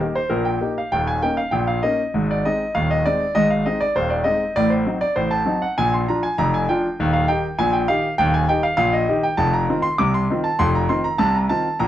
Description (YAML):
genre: ragtime piano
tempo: 99 BPM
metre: 2/4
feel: straight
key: Eb major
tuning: A4 = 440 Hz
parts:
  - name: clear concert grand piano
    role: solo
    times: 0.0-11.9 s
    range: Eb1 to D6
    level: -18 LUFS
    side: equal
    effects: none
room: light reverb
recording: worn, warbling old tape, cassette tape, warbly pitch drift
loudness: -18 LUFS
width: side -12 dB against mid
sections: 0.0-11.9 A section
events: none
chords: 0.0 Eb; 0.9 Eb5; 2.1 Ab; 4.6 Adim7; 5.8 Bb; 7.0 Eb; 9.4 F5